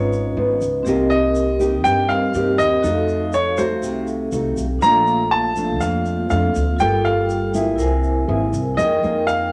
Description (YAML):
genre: bossa nova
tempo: 121 BPM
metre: 4/4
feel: straight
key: unclear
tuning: A4 = 440 Hz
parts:
  - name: warm concert grand piano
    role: melody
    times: 0.0-9.5 s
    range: C5 to Bb5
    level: -22 LUFS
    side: equal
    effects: none
  - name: nylon-string guitar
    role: accompaniment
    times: 0.0-9.5 s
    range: F2 to A4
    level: -24 LUFS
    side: equal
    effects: none
  - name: vibraphone with medium hard mallets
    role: accompaniment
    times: 0.0-9.5 s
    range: Bb3 to G#5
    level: -26 LUFS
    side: equal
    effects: none
  - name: upright bass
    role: bass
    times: 0.0-9.5 s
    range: G1 to G2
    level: -27 LUFS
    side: equal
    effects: none
  - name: egg shaker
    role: percussion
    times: 0.1-9.5 s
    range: none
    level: -44 LUFS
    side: equal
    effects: none
room: wet studio reverb, RT60 0.7 s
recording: none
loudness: -19 LUFS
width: mono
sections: 0.0-8.8 A section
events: none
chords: 0.0 Db9; 0.9 Cm7; 2.8 F7b9; 4.8 Bbmaj7; 6.8 Gm9; 7.8 Caug7; 8.8 Fm11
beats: 0.37 | 0.86 1.35 1.85 2.34 | 2.84 3.33 3.83 4.32 | 4.82 5.31 5.81 6.30 | 6.80 7.29 7.79 8.29 | 8.78 9.28